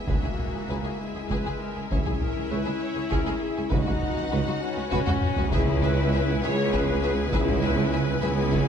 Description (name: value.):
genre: cinematic, epic orchestral film score.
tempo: 66 BPM (dotted quarters).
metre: 6/8.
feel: straight.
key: unclear.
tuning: A4 = 439 Hz.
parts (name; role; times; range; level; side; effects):
warm symphonic violin section; melody; 0.0-8.6 s; E5 to F#5; -40 LUFS; left 2 dB; none.
rich symphonic viola section; accompaniment; 0.0-8.7 s; E4 to C#5; -34 LUFS; left 2 dB; none.
rich symphonic string section; sustained chords; 0.0-8.7 s; G#3 to G#5; -36 LUFS; equal; none.
warm French horn section; sustained chords; 0.0-8.7 s; G#3 to G#4; -30 LUFS; left 5 dB; none.
warm symphonic violin section; second line; 0.1-8.6 s; F#4 to C#5; -36 LUFS; left 3 dB; none.
clear tuba; bass; 0.1-8.7 s; C#2; -33 LUFS; right 4 dB; none.
dark symphonic double bass section; bass; 0.1-8.7 s; C#2; -30 LUFS; right 4 dB; none.
rich symphonic cello section; bass; 0.1-8.7 s; C#2; -31 LUFS; right 1 dB; none.
taiko ensemble; drums; 0.1-8.7 s; none; -29 LUFS; equal; none.
room: wet scoring stage reverb, RT60 1.8 s.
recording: dark, warm production.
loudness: -23 LUFS.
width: side -8 dB against mid.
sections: 0.0-8.7 A section.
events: drum fill 5.1-5.5.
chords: 0.0 E/C#; 1.9 C#m; 3.7 Bsus2/C#; 5.5 E/C#.